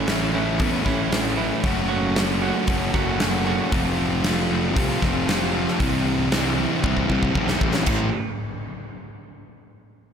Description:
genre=quiet-loud alternative rock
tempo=116 BPM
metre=4/4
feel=straight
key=unclear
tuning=A4 = 440 Hz
part: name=clean electric guitar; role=arpeggios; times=0.0-3.7 s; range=E3 to F#4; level=-28 LUFS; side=right 7 dB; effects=spring reverb
part: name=sludgy distorted guitar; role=riff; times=0.0-8.1 s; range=A2 to F#4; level=-26 LUFS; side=left 11 dB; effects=overdrive
part: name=thick fuzz guitar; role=riff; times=0.0-8.1 s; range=A2 to F#4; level=-26 LUFS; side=right 12 dB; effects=distortion
part: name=fuzz fingered electric bass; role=bass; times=0.0-8.1 s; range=F1 to E2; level=-26 LUFS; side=equal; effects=overdrive
part: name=huge arena drum kit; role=drums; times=0.1-8.0 s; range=crash cymbal, hi-hat, kick drum, snare drum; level=-25 LUFS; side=equal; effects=none
room=little or no reverb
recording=none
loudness=-19 LUFS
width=side -7 dB against mid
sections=0.0-7.9 A section; 7.9-9.9 B section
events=drum fill 6.8-7.9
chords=0.0 A; 1.7 F#m; 3.7 F; 5.8 C; 7.9 A5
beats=0.10 0.61 1.13 | 1.65 2.17 2.69 3.21 | 3.73 4.25 4.77 5.28 | 5.80 6.32 6.84 7.36 | 7.87

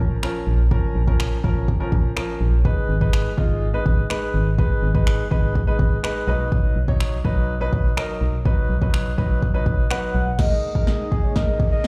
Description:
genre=dance-pop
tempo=124 BPM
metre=4/4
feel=straight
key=G# dorian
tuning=A4 = 440 Hz
part: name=warm baby grand piano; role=accompaniment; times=0.0-11.8 s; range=E#3 to C#5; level=-29 LUFS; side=equal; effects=sidechain pumping, slapback echo
part: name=organ-like FM bass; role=bass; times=0.0-10.3 s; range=G#1 to B1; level=-23 LUFS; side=equal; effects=sidechain pumping
part: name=deep house drum kit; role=drums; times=0.2-11.9 s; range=crash cymbal, finger snaps, kick drum, snare drum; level=-24 LUFS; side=equal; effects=overdrive
part: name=warm velvety synth lead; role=melody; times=9.9-11.9 s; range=C#5 to F#5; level=-29 LUFS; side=equal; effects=chorus, tape echo, slapback echo
part: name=ethereal airy pad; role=sustained chords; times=11.0-11.9 s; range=A#3 to G#4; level=-38 LUFS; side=equal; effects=ensemble chorus, built-in reverb, sidechain pumping
part: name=riser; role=sound effects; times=11.6-11.9 s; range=none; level=-56 LUFS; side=equal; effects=none
room=little or no reverb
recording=live gig heard through the venue's PA, club reverb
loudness=-21 LUFS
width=mono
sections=0.0-10.4 A section; 10.4-11.9 B section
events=build-up 10.4-11.9; drum fill 10.4-11.9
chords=0.0 A#m; 2.6 G#m; 6.3 B; 10.4 G#sus2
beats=0.23 | 0.71 1.20 1.68 2.16 | 2.65 3.13 3.62 4.10 | 4.58 5.07 5.55 6.04 | 6.52 7.00 7.49 7.97 | 8.46 8.94 9.42 9.91 | 10.39 10.87 11.36 11.84

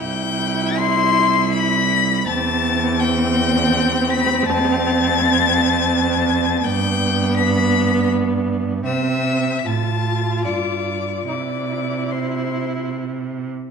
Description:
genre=classical, slow romantic movement for string quartet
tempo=71-84 BPM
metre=3/4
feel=rubato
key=C major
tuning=A4 = 436 Hz
part: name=rich violin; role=melody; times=0.0-12.9 s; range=C6 to C7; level=-22 LUFS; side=left 10 dB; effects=none
part: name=rich violin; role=second line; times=0.0-12.9 s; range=C5 to C6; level=-25 LUFS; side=left 6 dB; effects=none
part: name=rich viola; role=accompaniment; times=0.0-13.5 s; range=B3 to F4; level=-23 LUFS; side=right 2 dB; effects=none
part: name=rich cello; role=bass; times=0.0-13.5 s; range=C2 to C3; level=-21 LUFS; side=right 3 dB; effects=none
room=moderate recital hall reverb, RT60 1.4 s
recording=dark, warm production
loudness=-16 LUFS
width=side -6 dB against mid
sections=0.0-13.7 A section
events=none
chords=0.0 C; 2.3 C/E; 4.5 F; 6.6 G; 8.9 C; 9.7 F/A; 10.5 G5; 11.3 C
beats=0.78 1.53 | 2.27 3.00 3.73 | 4.46 5.20 5.93 | 6.64 7.38 8.11 | 8.86 9.66 10.45 | 11.28 12.11 12.94

